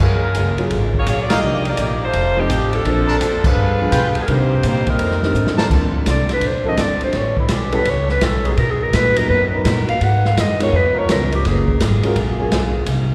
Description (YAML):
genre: jazz, big band swing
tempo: 168 BPM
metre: 4/4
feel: swing 65% on 8ths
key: unclear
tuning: A4 = 440 Hz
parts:
  - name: bright saxophone section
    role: melody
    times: 0.0-5.6 s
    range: F3 to Eb5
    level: -23 LUFS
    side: equal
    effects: none
  - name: picked steel-string acoustic guitar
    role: accompaniment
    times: 0.0-13.1 s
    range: F2 to C5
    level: -31 LUFS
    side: equal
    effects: none
  - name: upright bass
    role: bass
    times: 0.0-13.1 s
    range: F1 to C3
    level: -22 LUFS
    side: equal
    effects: none
  - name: open jazz drum kit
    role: drums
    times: 0.3-13.0 s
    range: crash cymbal, hi-hat, kick drum, ride cymbal, snare drum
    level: -24 LUFS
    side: equal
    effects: none
  - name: warm grand piano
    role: accompaniment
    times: 0.6-12.9 s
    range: Eb3 to A#4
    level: -28 LUFS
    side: equal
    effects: none
  - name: bright trumpet section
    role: stabs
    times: 1.3-5.7 s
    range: D4 to A5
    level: -30 LUFS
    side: equal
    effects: none
  - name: mellow trombone section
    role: sustained chords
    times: 5.7-12.8 s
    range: D3 to C#5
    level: -31 LUFS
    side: equal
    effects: none
  - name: clear clarinet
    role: melody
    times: 6.1-12.2 s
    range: E4 to Gb5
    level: -22 LUFS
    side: equal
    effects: none
room: wet church reverb, RT60 3.1 s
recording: recorded in a church or concert hall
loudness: -17 LUFS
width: mono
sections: 0.0-5.7 A section; 5.7-13.1 B section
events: band accent 1.2, 3.4; drum fill 5.4-5.7; clarinet solo 5.7-13.1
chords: 0.0 Gbmaj9; 1.4 Cm11; 2.1 F7; 2.9 Bbmaj9; 3.6 G7b9; 4.3 Cm7; 5.0 F13; 5.7 Bbmaj9; 7.1 A9; 8.6 Bmaj7; 10.0 Abm7; 10.7 Db13; 11.4 Gbmaj9